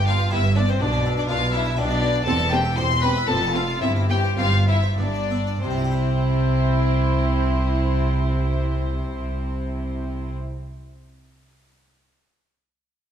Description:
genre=classical, baroque-style concerto movement with solo episodes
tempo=90-124 BPM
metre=3/4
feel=straight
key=C major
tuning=A4 = 439 Hz
part: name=rich chamber violin section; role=melody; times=0.0-10.3 s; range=C5 to C6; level=-27 LUFS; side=left 4 dB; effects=none
part: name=warm chamber violin section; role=second line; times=0.0-10.3 s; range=C4 to C5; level=-27 LUFS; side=left 3 dB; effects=none
part: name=harpsichord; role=accompaniment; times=0.0-10.6 s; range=E2 to F5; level=-33 LUFS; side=equal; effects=none
part: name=rich chamber double bass section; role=bass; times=0.0-10.3 s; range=E1 to C2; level=-24 LUFS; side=right 1 dB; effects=none
part: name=warm studio cello section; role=bass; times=0.0-10.3 s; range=E2 to C3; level=-25 LUFS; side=right 2 dB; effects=none
part: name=dark chamber viola section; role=accompaniment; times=0.1-10.3 s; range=B3 to E4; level=-30 LUFS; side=right 2 dB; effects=none
room=wet recital hall reverb, RT60 1.6 s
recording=minimal, uncompressed stereo recording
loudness=-19 LUFS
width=side -9 dB against mid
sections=0.0-5.6 A section; 5.6-9.6 B section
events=slowing down 1.5-5.6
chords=0.0 G; 0.8 G/B (rootless); 2.3 C/E; 3.3 Dm7/F; 3.8 C/G; 5.0 G; 5.6 C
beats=0.33 | 0.81 1.29 1.78 | 2.27 2.77 3.28 | 3.82 4.38 4.98 | 5.63 6.29 6.95 | 7.61 8.28 8.94

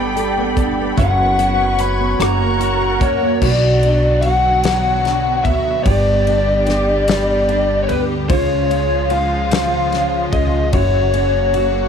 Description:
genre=six-eight pop ballad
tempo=49 BPM (dotted quarters)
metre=6/8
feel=straight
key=B minor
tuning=A4 = 442 Hz
part: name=lead guitar through a small cranked amp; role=melody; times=0.0-11.9 s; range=B4 to B5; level=-18 LUFS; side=left 1 dB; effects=overdrive
part: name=nylon-string guitar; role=accompaniment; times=0.0-11.9 s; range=F#2 to A4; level=-21 LUFS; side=equal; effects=double-tracked left and right
part: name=rich studio string section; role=sustained chords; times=0.0-11.9 s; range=C#3 to C#6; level=-24 LUFS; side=left 1 dB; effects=none
part: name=fingerpicked steel-string acoustic guitar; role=arpeggios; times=0.0-4.0 s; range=F#3 to A4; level=-25 LUFS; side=right 15 dB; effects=slapback echo
part: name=upright bass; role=bass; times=0.0-11.9 s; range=F#1 to D2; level=-20 LUFS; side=equal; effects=none
part: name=modern studio drum kit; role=drums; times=0.2-11.7 s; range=crash cymbal, hi-hat, kick drum, ride cymbal, rim click, snare drum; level=-23 LUFS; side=left 2 dB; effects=none
room=small room ambience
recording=1960s-style stereo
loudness=-14 LUFS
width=side -7 dB against mid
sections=0.0-3.4 A section; 3.4-11.9 B section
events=none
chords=0.0 Gadd9; 1.0 F#sus4; 2.2 F#; 3.4 Bm; 5.9 G; 8.3 C#; 10.7 F#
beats=| 0.98 2.20 | 3.42 4.64 | 5.86 7.08 | 8.30 9.52 | 10.73

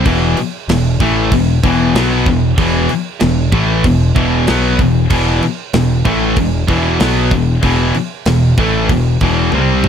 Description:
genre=heavy metal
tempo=95 BPM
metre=4/4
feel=straight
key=unclear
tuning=A4 = 440 Hz
part: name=high-gain distorted guitar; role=riff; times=0.0-9.9 s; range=E2 to C4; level=-17 LUFS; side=left 10 dB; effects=distortion
part: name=overdriven electric guitar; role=riff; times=0.0-9.9 s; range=E2 to C4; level=-18 LUFS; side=equal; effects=none
part: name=tight distorted guitar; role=riff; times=0.0-9.9 s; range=E2 to C4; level=-18 LUFS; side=right 9 dB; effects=distortion
part: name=growling picked electric bass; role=bass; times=0.0-9.9 s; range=E1 to C2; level=-17 LUFS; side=equal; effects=overdrive
part: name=tight metal drum kit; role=drums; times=0.1-9.9 s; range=crash cymbal, kick drum, snare drum, toms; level=-19 LUFS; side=right 1 dB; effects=none
room=light reverb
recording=none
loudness=-11 LUFS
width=side -8 dB against mid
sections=0.0-9.9 A section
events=drum fill 9.5-9.9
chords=0.1 E5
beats=| 0.07 0.70 1.33 1.96 | 2.59 3.22 3.85 4.49 | 5.12 5.75 6.38 7.01 | 7.64 8.27 8.91 9.54

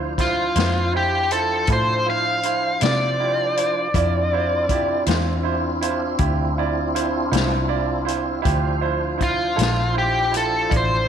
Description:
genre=slow blues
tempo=53 BPM (dotted quarters)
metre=12/8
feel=straight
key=D minor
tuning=A4 = 440 Hz
part: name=bright baby grand piano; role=accompaniment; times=0.0-11.0 s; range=E4 to D5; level=-26 LUFS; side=right 12 dB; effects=none
part: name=tonewheel organ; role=sustained chords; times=0.0-11.1 s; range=F3 to C5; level=-27 LUFS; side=left 1 dB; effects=slow rotary speaker, overdrive, chorus vibrato
part: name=vintage muted fingered electric bass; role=bass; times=0.0-11.1 s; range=A1 to C3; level=-25 LUFS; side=left 1 dB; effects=none
part: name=smooth overdriven lead guitar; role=melody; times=0.2-11.1 s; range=F4 to F5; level=-21 LUFS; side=left 1 dB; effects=none
part: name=vintage drum kit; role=drums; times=0.2-10.9 s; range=hi-hat, kick drum, snare drum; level=-25 LUFS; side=left 4 dB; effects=none
room=moderate echo chamber reverb, RT60 2.2 s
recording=1960s-style stereo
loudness=-18 LUFS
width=side -8 dB against mid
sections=0.0-11.1 A section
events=none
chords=0.0 Dm9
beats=0.55 1.68 2.81 | 3.93 5.06 6.19 7.31 | 8.44 9.57 10.71

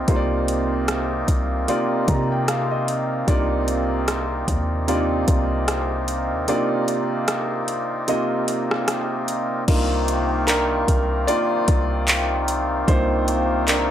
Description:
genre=contemporary R&B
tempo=75 BPM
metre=4/4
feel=swing 58% on 16ths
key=C minor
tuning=A4 = 440 Hz
part: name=warm concert grand piano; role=accompaniment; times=0.0-13.9 s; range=C3 to Bb5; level=-23 LUFS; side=right 1 dB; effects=none
part: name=hand-pumped harmonium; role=sustained chords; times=0.0-13.9 s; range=C3 to F4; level=-25 LUFS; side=left 1 dB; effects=stereo widening, sidechain pumping
part: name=warm 808-style bass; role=bass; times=0.0-13.9 s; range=C2 to C3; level=-25 LUFS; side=equal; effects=transformer saturation
part: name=smooth R&B drum kit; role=drums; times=0.1-13.9 s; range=crash cymbal, handclaps, hi-hat, kick drum, rim click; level=-23 LUFS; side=equal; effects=none
room=little or no reverb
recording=dry, gritty hardware recording, transformer saturation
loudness=-19 LUFS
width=side -10 dB against mid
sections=0.0-9.7 A section; 9.7-13.9 B section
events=grand piano fill 1.7-3.3; kick muted 6.5-9.7; grand piano solo 9.7-13.9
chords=0.0 Cm11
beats=| 0.08 0.88 1.68 2.48 | 3.28 4.08 4.88 5.68 | 6.48 7.28 8.08 8.88 | 9.68 10.48 11.28 12.08 | 12.88 13.68

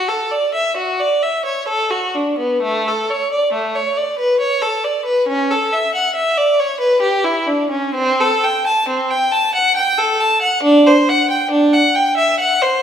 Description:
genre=classical, baroque-style suite movement for unaccompanied violin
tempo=67 BPM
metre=3/4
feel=uneven beats, rubato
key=unclear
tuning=A4 = 439 Hz
part: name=clear violin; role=solo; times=0.0-12.8 s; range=A3 to A5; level=-14 LUFS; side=equal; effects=none
room=wet recital hall reverb, RT60 1.5 s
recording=recorded in a church or concert hall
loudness=-14 LUFS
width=side -8 dB against mid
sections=0.0-12.8 A section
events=none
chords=none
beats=0.76 1.69 | 2.63 3.54 4.40 | 5.29 6.17 7.04 | 7.96 8.89 9.77 | 10.65 11.53 12.40

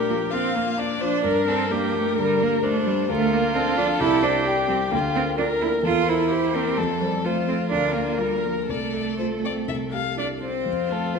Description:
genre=quick classical-period movement for piano quartet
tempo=129 BPM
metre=4/4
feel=rubato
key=F major from 3.1 s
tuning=A4 = 439 Hz
part: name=warm violin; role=melody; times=0.0-11.2 s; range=G4 to F5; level=-26 LUFS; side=left 9 dB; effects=none
part: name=rich cello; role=second line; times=0.0-11.2 s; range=F3 to F4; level=-24 LUFS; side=right 6 dB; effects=none
part: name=dark baby grand piano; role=accompaniment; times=0.0-11.2 s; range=C2 to C5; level=-28 LUFS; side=left 2 dB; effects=none
part: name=rich viola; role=accompaniment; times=0.0-11.2 s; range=D4 to Bb4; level=-28 LUFS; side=right 1 dB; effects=none
room=moderate scoring stage reverb, RT60 1.9 s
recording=minimal, uncompressed stereo recording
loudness=-20 LUFS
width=side -5 dB against mid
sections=0.0-10.7 A section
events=none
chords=0.0 Bb; 1.2 Gm; 3.1 Bb/D; 4.0 C5; 4.9 Bb/D; 5.8 C7/E; 6.8 F; 7.7 Bb/D; 8.7 F/C; 9.7 C; 10.7 F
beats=0.33 0.79 | 1.25 1.71 2.17 2.63 | 3.09 3.55 4.00 4.47 | 4.93 5.39 5.85 6.31 | 6.78 7.24 7.71 8.19 | 8.68 9.20 9.69 10.18 | 10.67 11.15

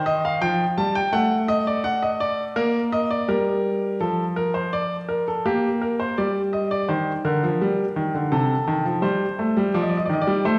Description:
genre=classical, baroque-style two-part invention for grand piano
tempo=84 BPM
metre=4/4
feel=straight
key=C minor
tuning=A4 = 441 Hz
part: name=clear baby grand piano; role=solo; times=0.0-10.6 s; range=C3 to A5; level=-23 LUFS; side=equal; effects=none
room=wet recital hall reverb, RT60 1.8 s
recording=heard from further back in the room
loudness=-23 LUFS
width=mono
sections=0.0-4.0 A section; 4.0-10.6 B section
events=none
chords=0.0 Cm/Eb (rootless); 1.1 D/A; 2.6 Gm/Bb; 4.0 Bb/F; 5.5 Gm/Bb; 6.9 Cm; 8.3 Adim/C; 9.7 F7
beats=0.40 | 1.12 1.83 2.56 3.28 | 4.00 4.73 5.46 6.17 | 6.89 7.60 8.31 9.03 | 9.74 10.45

